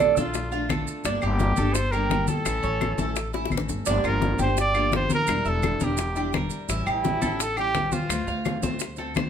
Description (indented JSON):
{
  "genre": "latin, Cuban son and guajira",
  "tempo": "170 BPM",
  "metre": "4/4",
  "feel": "straight",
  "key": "unclear",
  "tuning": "A4 = 440 Hz",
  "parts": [
    { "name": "clear trumpet", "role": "melody", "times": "0.0-8.6 s", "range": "E4 to D5", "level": "-27 LUFS", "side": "right 1 dB", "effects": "none" },
    { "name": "picked steel-string acoustic guitar", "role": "accompaniment", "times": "0.0-9.3 s", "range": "D3 to A4", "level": "-31 LUFS", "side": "left 3 dB", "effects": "none" },
    { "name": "Cuban tres", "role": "arpeggios", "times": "0.0-9.3 s", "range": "D4 to F5", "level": "-29 LUFS", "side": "right 7 dB", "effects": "none" },
    { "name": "upright bass", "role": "bass", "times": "0.0-9.3 s", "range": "E1 to D2", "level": "-29 LUFS", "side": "equal", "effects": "none" },
    { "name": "bongos", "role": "percussion", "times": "0.0-9.3 s", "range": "none", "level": "-32 LUFS", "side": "left 9 dB", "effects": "none" },
    { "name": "claves", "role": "percussion", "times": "0.0-9.3 s", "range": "none", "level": "-35 LUFS", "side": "left 2 dB", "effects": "none" },
    { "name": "congas", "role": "percussion", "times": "0.0-9.3 s", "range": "none", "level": "-30 LUFS", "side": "left 3 dB", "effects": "none" },
    { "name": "maracas", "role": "percussion", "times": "0.0-9.3 s", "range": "none", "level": "-36 LUFS", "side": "right 6 dB", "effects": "none" }
  ],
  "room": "moderate large studio reverb, RT60 0.9 s",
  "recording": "minimal, uncompressed stereo recording",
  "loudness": "-22 LUFS",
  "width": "side -8 dB against mid",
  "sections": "0.0-9.3 A section",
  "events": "drum fill 3.3-3.9",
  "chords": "0.0 Bbmaj7; 1.0 Gmadd9; 2.5 A; 3.9 Gm7; 5.3 Em7b5; 6.7 A7; 8.1 Dm7"
}